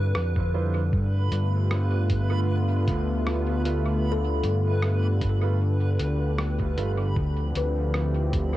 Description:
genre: ambient dub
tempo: 77 BPM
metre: 4/4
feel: swing 54% on 16ths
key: unclear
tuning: A4 = 437 Hz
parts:
  - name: warm analog pad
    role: sustained chords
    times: 0.0-8.6 s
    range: D3 to G4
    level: -29 LUFS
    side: left 1 dB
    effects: chorus, cassette tape
  - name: kalimba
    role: arpeggios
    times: 0.0-8.6 s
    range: A4 to B4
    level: -36 LUFS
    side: left 6 dB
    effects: cassette tape, dub echo
  - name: overdriven fingered electric bass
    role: bass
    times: 0.0-8.6 s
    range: G1 to G2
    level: -24 LUFS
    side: equal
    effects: none
  - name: backwards swelling texture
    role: texture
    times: 0.0-8.6 s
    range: B4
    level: -36 LUFS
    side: right 2 dB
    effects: built-in reverb, cassette tape
  - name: lo-fi sampler-style drum kit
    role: drums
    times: 0.1-8.5 s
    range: hi-hat, rim click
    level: -36 LUFS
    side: equal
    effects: small room ambience, cassette tape, dub echo
  - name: electronic kick drum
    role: drums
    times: 0.4-8.5 s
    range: none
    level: -28 LUFS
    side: equal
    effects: small room ambience, cassette tape
  - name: bright upright piano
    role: stabs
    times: 0.5-8.6 s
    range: G3 to C5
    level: -38 LUFS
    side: right 8 dB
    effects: low-pass filter, cassette tape, dub echo, plate reverb
room: light reverb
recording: home recording on cassette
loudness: -22 LUFS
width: side -15 dB against mid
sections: 0.0-8.6 A section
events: none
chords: 0.0 Dm11; 0.9 G9; 7.2 Dm11

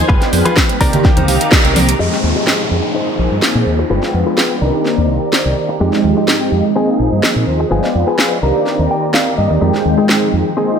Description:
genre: filtered disco house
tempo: 126 BPM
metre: 4/4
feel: straight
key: F dorian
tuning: A4 = 442 Hz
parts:
  - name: mellow synth brass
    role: accompaniment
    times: 0.0-10.8 s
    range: Eb3 to G5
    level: -17 LUFS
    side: right 1 dB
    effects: chorus, phaser, sidechain pumping, low-pass filter
  - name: string machine, full ensemble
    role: sustained chords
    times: 0.0-10.8 s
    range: Eb3 to D6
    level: -20 LUFS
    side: equal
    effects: phaser, ensemble chorus, sidechain pumping, low-pass filter
  - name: direct-recorded clean electric guitar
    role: riff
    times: 0.1-10.7 s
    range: Ab3 to Bb5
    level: -20 LUFS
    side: left 3 dB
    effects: warbly pitch drift, sidechain pumping, low-pass filter
  - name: fingered electric bass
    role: bass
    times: 0.1-10.4 s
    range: G1 to Bb2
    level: -16 LUFS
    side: equal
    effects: sidechain pumping, low-pass filter
  - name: electronic kick drum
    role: drums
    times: 0.1-1.6 s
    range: none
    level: -13 LUFS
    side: equal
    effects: studio ambience
  - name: tambourine and congas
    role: percussion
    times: 0.1-2.0 s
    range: none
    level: -22 LUFS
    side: right 3 dB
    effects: sidechain pumping on perc, low-pass filter on perc
  - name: house drum kit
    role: drums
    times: 0.2-10.2 s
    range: hi-hat, snare drum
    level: -17 LUFS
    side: equal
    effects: sidechain pumping on hats, studio ambience
  - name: downlifter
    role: sound effects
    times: 2.0-5.8 s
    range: none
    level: -24 LUFS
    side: equal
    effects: none
room: moderate echo chamber reverb, RT60 1.5 s, digital ambience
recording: none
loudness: -11 LUFS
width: side -7 dB against mid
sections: 0.0-2.0 A section; 2.0-10.8 B section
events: clean electric guitar fill 0.6-2.0, 8.7-9.6; band accent 1.5; filter sweep 2.0-10.8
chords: 0.1 G7b9; 0.8 Cm9; 2.0 Fm9; 3.0 Bb9sus4; 3.9 G7b9; 4.6 Cm9; 5.8 Fm9; 6.8 Bb9sus4; 7.7 G7b9; 8.4 Cm9; 9.6 Fm9

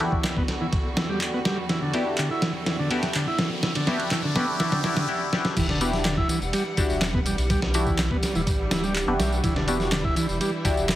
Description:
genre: breakbeat, breaks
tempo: 124 BPM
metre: 4/4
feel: straight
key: E minor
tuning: A4 = 440 Hz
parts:
  - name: warm studio string section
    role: sustained chords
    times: 0.0-11.0 s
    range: E2 to F#5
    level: -32 LUFS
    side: right 1 dB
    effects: sidechain pumping
  - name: combo organ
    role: riff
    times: 0.0-10.5 s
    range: D3 to E4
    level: -28 LUFS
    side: equal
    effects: tube saturation, low-pass filter, dub echo
  - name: band-passed chord stab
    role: stabs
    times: 0.0-10.9 s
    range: D4 to G4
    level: -28 LUFS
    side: left 2 dB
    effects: phaser, cassette tape, dub echo
  - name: dusty soul sampler-style drum kit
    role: drums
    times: 0.0-11.0 s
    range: crash cymbal, kick drum, ride cymbal, snare drum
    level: -26 LUFS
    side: equal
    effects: none
  - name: riser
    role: sound effects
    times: 0.4-5.1 s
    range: none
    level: -37 LUFS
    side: left 1 dB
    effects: none
  - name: electronic handclaps and tambourine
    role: drums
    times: 0.2-11.0 s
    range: none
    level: -32 LUFS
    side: left 1 dB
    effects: high-pass filter on snare, high-pass filter on perc
  - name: saturated sub bass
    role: bass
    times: 5.6-11.0 s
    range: D1 to B1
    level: -29 LUFS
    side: equal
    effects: none
room: moderate small room reverb, RT60 0.5 s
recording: heavily compressed radio sound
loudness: -22 LUFS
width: side -13 dB against mid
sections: 0.0-5.6 A section; 5.6-11.0 B section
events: build-up 0.0-5.6; riser 0.4-5.1; drum fill 1.7-5.1, 5.3; drop 5.6-11.0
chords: 0.0 Em9

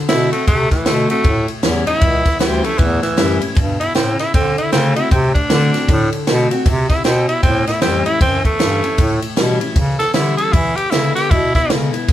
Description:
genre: rockabilly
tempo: 155 BPM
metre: 4/4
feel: swing 62% on 8ths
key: unclear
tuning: A4 = 440 Hz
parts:
  - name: picked steel-string acoustic guitar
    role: accompaniment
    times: 0.0-12.1 s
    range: E2 to F#4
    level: -21 LUFS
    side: left 3 dB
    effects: none
  - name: raspy tenor saxophone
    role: melody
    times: 0.1-11.7 s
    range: E3 to A4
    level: -18 LUFS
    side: equal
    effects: none
  - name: bright bass clarinet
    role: bass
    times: 0.1-12.1 s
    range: C#2 to E3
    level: -20 LUFS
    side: equal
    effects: none
  - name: compact cocktail drum kit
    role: drums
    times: 0.1-12.1 s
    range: kick drum, ride cymbal, snare drum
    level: -17 LUFS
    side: right 1 dB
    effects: none
room: moderate stone room reverb, RT60 1.2 s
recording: band playing live in one room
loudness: -13 LUFS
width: side -12 dB against mid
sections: 0.0-12.1 A section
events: none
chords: 0.0 D7; 1.2 A7; 4.3 D7; 7.4 A7; 10.5 E7

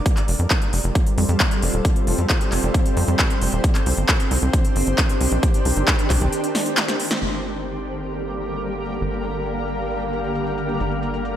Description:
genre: uplifting trance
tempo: 134 BPM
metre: 4/4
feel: straight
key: G minor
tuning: A4 = 440 Hz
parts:
  - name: tight sequencer bass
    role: bass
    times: 0.0-11.4 s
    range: Eb1 to F2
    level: -23 LUFS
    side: equal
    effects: sidechain pumping
  - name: shimmering ambient pad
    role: sustained chords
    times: 0.1-11.4 s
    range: D3 to C5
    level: -24 LUFS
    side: equal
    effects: chorus, built-in reverb, sidechain pumping
  - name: big-room dance drum kit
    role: drums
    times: 0.1-11.3 s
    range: crash cymbal, handclaps, hi-hat, snare drum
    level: -24 LUFS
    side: equal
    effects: sidechain pumping on hats, low-pass filter on hats, sidechain pumping on cymbals, low-pass filter on cymbals, low-pass filter on snare, low-pass filter on room
  - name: electronic kick drum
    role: drums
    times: 0.1-6.2 s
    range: none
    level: -19 LUFS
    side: equal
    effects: none
room: light reverb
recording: none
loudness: -18 LUFS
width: side -11 dB against mid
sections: 0.0-7.2 A section; 7.2-11.4 B section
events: filter sweep on ambient pad 0.0-7.2; break 6.3-7.2; drum fill 6.5-7.2; band accent 7.1; filter sweep on drum 7.2-11.4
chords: 0.1 Fadd9; 3.6 Cmadd9; 7.2 Gm

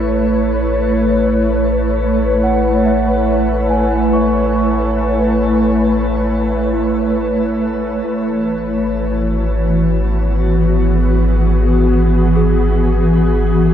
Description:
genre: ambient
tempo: 70 BPM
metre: 4/4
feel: straight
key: A major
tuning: A4 = 443 Hz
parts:
  - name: ethereal airy pad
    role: sustained chords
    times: 0.0-13.7 s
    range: E3 to C#5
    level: -14 LUFS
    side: equal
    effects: ensemble chorus, built-in reverb, shimmer reverb
  - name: large celesta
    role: arpeggios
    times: 0.0-13.7 s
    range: E4 to C#6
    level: -25 LUFS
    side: equal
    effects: ping-pong delay, shimmer reverb
  - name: warm sub bass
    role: bass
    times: 0.0-13.7 s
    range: G#1 to A1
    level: -18 LUFS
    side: equal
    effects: none
room: wet huge ambient reverb, RT60 8.4 s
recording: dark, warm production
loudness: -13 LUFS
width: side -9 dB against mid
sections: 0.0-13.7 A section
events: fade-in on celesta 0.0-13.7; fade-in on sub bass 0.0-13.7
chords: 0.0 A; 8.1 E6/G#

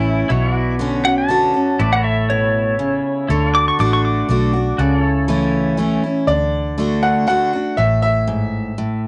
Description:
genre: honky-tonk and classic country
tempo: 120 BPM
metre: 3/4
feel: straight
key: A major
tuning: A4 = 440 Hz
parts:
  - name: pedal steel guitar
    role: melody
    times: 0.0-4.8 s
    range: E4 to D6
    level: -21 LUFS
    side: equal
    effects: cassette tape
  - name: picked steel-string acoustic guitar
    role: accompaniment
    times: 0.0-9.1 s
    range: G#2 to F#4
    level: -21 LUFS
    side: equal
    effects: cassette tape
  - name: pedal steel guitar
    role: sustained chords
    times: 0.0-6.3 s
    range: E4 to D5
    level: -28 LUFS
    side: equal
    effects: lush chorus, cassette tape
  - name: vintage muted fingered electric bass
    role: bass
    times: 0.0-9.0 s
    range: A1 to D2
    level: -23 LUFS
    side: equal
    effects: none
  - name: bright upright piano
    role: second line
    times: 6.3-9.0 s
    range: D5 to F#5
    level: -21 LUFS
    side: equal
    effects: cassette tape
room: moderate small room ambience, RT60 0.5 s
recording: home recording on cassette, nothing above 10.5 kHz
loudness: -17 LUFS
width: mono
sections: 0.0-6.3 A section; 6.3-9.1 B section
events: pedal steel guitar solo 0.0-6.3; upright piano solo 6.3-9.1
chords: 0.3 Bmadd9; 1.8 A; 3.3 D; 4.8 A/C#; 6.3 D; 7.8 A5

